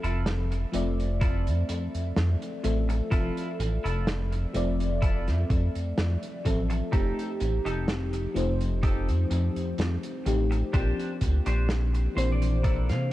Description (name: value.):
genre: vaporwave.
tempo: 63 BPM.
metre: 4/4.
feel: straight.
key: F major.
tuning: A4 = 440 Hz.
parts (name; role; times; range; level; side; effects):
FM electric piano with soft pad layer; accompaniment; 0.0-13.1 s; E3 to E5; -31 LUFS; left 1 dB; wide subtle chorus, analog delay.
clean electric guitar; riff; 0.0-13.1 s; Bb3 to F5; -38 LUFS; right 1 dB; wide subtle chorus, low-pass filter, analog delay.
chorused synth bass; bass; 0.0-13.1 s; F1 to C3; -26 LUFS; equal; none.
loose indie drum kit; drums; 0.0-13.1 s; hi-hat, snare drum; -35 LUFS; right 1 dB; none.
electronic kick drum; drums; 1.2-12.8 s; none; -25 LUFS; equal; none.
room: small room ambience.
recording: cassette tape.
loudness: -24 LUFS.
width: side -15 dB against mid.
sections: 0.0-13.1 A section.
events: clean electric guitar fill 11.7-13.1.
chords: 0.0 Fmaj7; 6.9 F9; 10.7 Bb69.